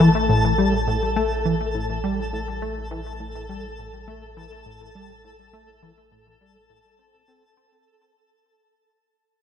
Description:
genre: ambient, sequencer-driven space music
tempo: 103 BPM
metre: 4/4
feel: straight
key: A minor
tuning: A4 = 440 Hz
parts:
  - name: tight sequenced synth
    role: riff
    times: 0.0-7.7 s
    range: A2 to C4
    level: -21 LUFS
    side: left 1 dB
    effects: chorus, ping-pong delay
  - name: round analog bass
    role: bass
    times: 0.0-7.8 s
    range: A1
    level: -30 LUFS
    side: left 1 dB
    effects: none
  - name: twinkling granular texture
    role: texture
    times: 0.0-7.9 s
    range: A4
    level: -27 LUFS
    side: equal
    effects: built-in reverb
room: moderate plate reverb, RT60 2.9 s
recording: dreamy mix soaked in reverb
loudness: -21 LUFS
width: side -9 dB against mid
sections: 0.0-7.9 A section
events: fade-out on synth arpeggio sound 0.0-7.9; fade-out on analog synth bass 0.0-7.9; fade-out 0.0-7.9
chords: none

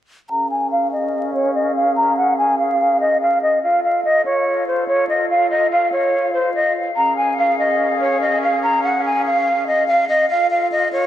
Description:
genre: hip hop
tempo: 144 BPM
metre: 4/4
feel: half-time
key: Bb minor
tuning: A4 = 436 Hz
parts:
  - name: breathy hollow jazz flute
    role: melody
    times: 0.3-11.1 s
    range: C5 to Bb5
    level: -16 LUFS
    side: equal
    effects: low-pass filter, ping-pong delay
  - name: breathy small flute group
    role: sustained chords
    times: 0.3-11.1 s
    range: Db4 to F5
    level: -22 LUFS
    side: left 1 dB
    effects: low-pass filter
room: moderate lush hall reverb, RT60 2.6 s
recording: vinyl crackle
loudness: -15 LUFS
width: side -12 dB against mid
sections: 0.3-11.1 A section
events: filter sweep 0.3-11.1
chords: 0.3 Bbm7; 3.6 F; 7.0 Bbm7; 10.3 F

